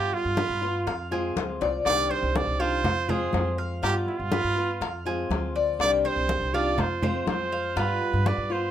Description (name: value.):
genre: latin, Cuban son and guajira.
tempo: 122 BPM.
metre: 4/4.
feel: straight.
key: unclear.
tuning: A4 = 441 Hz.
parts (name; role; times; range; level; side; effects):
bright trumpet; melody; 0.0-8.7 s; F4 to D5; -28 LUFS; right 4 dB; none.
flamenco guitar; accompaniment; 0.0-8.7 s; C3 to G4; -31 LUFS; left 2 dB; none.
Cuban tres; arpeggios; 0.0-8.7 s; F4 to F5; -30 LUFS; left 2 dB; none.
upright bass; bass; 0.0-8.7 s; C2 to G2; -31 LUFS; equal; none.
bongos; percussion; 0.1-8.7 s; none; -34 LUFS; left 7 dB; none.
congas; percussion; 0.1-8.5 s; none; -30 LUFS; equal; none.
room: moderate studio reverb, RT60 0.5 s.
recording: minimal, uncompressed stereo recording.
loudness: -23 LUFS.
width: side -10 dB against mid.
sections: 0.0-8.7 A section.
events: drum fill 1.4-1.9.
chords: 0.0 G7; 0.9 Fm; 1.9 Cmadd9; 2.8 Fm; 3.8 G7; 4.8 Fm; 5.8 Cmadd9; 6.8 Fm; 7.8 G7.